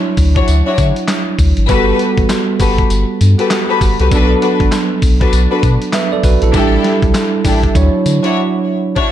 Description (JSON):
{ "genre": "R&B, new jack swing", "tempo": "99 BPM", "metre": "4/4", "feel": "swing 60% on 16ths", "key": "D major", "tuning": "A4 = 440 Hz", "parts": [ { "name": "bell-like tine electric piano", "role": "accompaniment", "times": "0.0-9.0 s", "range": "F#3 to E5", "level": "-16 LUFS", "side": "right 4 dB", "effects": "none" }, { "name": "round analog bass", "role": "bass", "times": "0.2-8.2 s", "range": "G1 to D3", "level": "-13 LUFS", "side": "equal", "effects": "none" }, { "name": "dusty soul sampler-style drum kit", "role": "drums", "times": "0.2-9.1 s", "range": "handclaps, hi-hat, kick drum, snare drum, tambourine", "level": "-16 LUFS", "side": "equal", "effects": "none" }, { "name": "warm studio string section", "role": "stabs", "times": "0.4-9.1 s", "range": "D4 to C#5", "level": "-17 LUFS", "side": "left 4 dB", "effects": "digital delay" } ], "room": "moderate digital room reverb, RT60 1.4 s", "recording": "dark, warm production", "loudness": "-10 LUFS", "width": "side -11 dB against mid", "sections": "0.0-9.0 A section", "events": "break 8.4-9.0", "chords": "0.0 Dmaj9; 1.7 Gmaj9; 4.1 Bm7; 6.5 A7sus4; 7.8 Dmaj9", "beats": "0.48 1.08 | 1.69 2.30 2.90 3.51 | 4.12 4.72 5.33 5.93 | 6.54 7.15 7.75 8.36 | 8.96" }